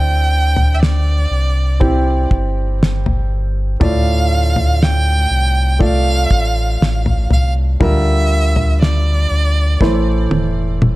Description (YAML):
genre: pop ballad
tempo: 60 BPM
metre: 4/4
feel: straight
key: D minor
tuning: A4 = 440 Hz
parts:
  - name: bright violin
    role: melody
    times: 0.0-10.3 s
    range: D5 to G5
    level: -21 LUFS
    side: right 2 dB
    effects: digital delay
  - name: warm grand piano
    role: accompaniment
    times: 0.0-11.0 s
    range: A2 to D5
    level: -21 LUFS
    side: right 1 dB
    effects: none
  - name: sub bass with octave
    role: bass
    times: 0.0-11.0 s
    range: E1 to D2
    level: -15 LUFS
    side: equal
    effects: none
  - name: damped 70s drum kit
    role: drums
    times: 0.6-11.0 s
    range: kick drum, snare drum, toms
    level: -16 LUFS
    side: equal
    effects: none
room: studio reverb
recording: dark, warm production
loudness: -13 LUFS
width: side -18 dB against mid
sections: 0.0-11.0 A section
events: drum fill 9.8-11.0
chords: 0.0 Cadd9; 3.8 Dm; 7.8 Gm7/D; 9.8 Am